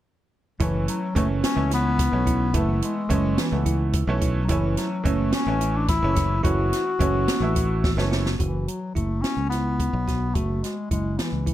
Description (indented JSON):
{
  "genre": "progressive instrumental, band music in an uneven meter",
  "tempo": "216 BPM (eighths)",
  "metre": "7/8",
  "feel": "straight",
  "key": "F# minor",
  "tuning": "A4 = 440 Hz",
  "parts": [
    { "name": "warm bass clarinet", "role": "melody", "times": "0.6-11.5 s", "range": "E3 to F#4", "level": "-26 LUFS", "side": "left 3 dB", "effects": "ping-pong delay" },
    { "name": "bright concert grand piano", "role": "accompaniment", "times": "0.6-8.3 s", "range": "E3 to E4", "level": "-30 LUFS", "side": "right 4 dB", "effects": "none" },
    { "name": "bell-like tine electric piano", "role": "arpeggios", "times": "0.6-11.5 s", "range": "C#4 to F#4", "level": "-32 LUFS", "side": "right 6 dB", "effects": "ping-pong delay" },
    { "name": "fingered electric bass", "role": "bass", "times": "0.6-11.5 s", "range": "F#1 to C#2", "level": "-24 LUFS", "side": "equal", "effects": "none" },
    { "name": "open jazz drum kit", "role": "drums", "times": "0.6-11.5 s", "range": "hi-hat, kick drum, snare drum", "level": "-26 LUFS", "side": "equal", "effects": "none" }
  ],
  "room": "light reverb",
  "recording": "none",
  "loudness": "-21 LUFS",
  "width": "side -13 dB against mid",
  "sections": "0.6-8.4 A section; 8.4-11.5 B section",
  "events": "drum fill 7.8-8.4",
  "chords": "0.6 F#m7; 8.4 F#5",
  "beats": "| 0.60 0.88 1.16 1.44 1.72 1.99 2.27 | 2.55 2.83 3.11 3.38 3.66 3.94 4.22 | 4.50 4.78 5.05 5.33 5.61 5.89 6.17 | 6.45 6.72 7.00 7.28 7.56 7.84 8.12 | 8.40 8.68 8.95 9.23 9.51 9.79 10.07 | 10.35 10.63 10.91 11.19 11.46"
}